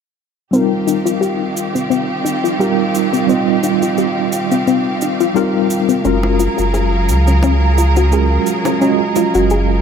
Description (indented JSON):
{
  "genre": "sunset chillout",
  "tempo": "87 BPM",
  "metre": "4/4",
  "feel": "swing 54% on 16ths",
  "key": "Eb major",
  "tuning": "A4 = 437 Hz",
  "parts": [
    { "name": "mellow tine electric piano", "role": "accompaniment", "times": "0.5-9.8 s", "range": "G3 to Eb5", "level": "-17 LUFS", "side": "moving between left 6 dB and right 9 dB", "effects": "medium stereo tremolo, auto-pan, low-pass filter, ping-pong delay" },
    { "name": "clear symphonic string section", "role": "sustained chords", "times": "0.5-9.8 s", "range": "Eb3 to F5", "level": "-21 LUFS", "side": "right 1 dB", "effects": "none" },
    { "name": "soft round pluck", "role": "arpeggios", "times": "0.5-9.6 s", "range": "C4 to Ab4", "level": "-19 LUFS", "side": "left 4 dB", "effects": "chorus, ping-pong delay" },
    { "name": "cabasa", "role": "drums", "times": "0.5-9.7 s", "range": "none", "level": "-29 LUFS", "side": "right 4 dB", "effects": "none" },
    { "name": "warm sub bass", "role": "bass", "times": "6.0-9.8 s", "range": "Gb1 to Db2", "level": "-14 LUFS", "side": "equal", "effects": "none" },
    { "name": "bongos", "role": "percussion", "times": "6.2-9.3 s", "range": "none", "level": "-24 LUFS", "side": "left 1 dB", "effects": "none" }
  ],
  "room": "light reverb",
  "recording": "none",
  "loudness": "-13 LUFS",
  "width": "side -7 dB against mid",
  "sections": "0.5-9.8 A section",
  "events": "filter sweep on tine electric piano 0.5-9.8; filter sweep on synth arpeggio sound 0.5-9.8",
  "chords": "0.5 Eb69; 6.1 Gbmaj9",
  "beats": "| 0.54 1.23 1.92 2.60 | 3.29 3.98 4.67 5.36 | 6.05 6.74 7.43 8.12 | 8.81 9.50"
}